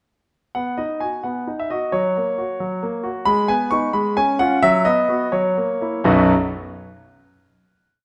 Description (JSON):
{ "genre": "classical-period piano sonatina", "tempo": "81-90 BPM (dotted quarters)", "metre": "6/8", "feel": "rubato", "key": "B major", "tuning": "A4 = 440 Hz", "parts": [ { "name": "clear concert grand piano", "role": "solo", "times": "0.5-6.3 s", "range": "B1 to C#6", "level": "-20 LUFS", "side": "equal", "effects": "none" } ], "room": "wet recital hall reverb, RT60 1.4 s", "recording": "none", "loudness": "-20 LUFS", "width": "mono", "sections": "0.6-6.1 A section; 6.1-7.5 final chord", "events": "none", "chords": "0.6 B; 1.9 F#; 3.3 G#m; 3.9 C#/G#; 4.6 F#sus4; 5.3 F#7; 6.1 B", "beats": "| 0.55 1.24 | 1.93 2.60 | 3.27 3.94 | 4.62 5.32 | 6.05" }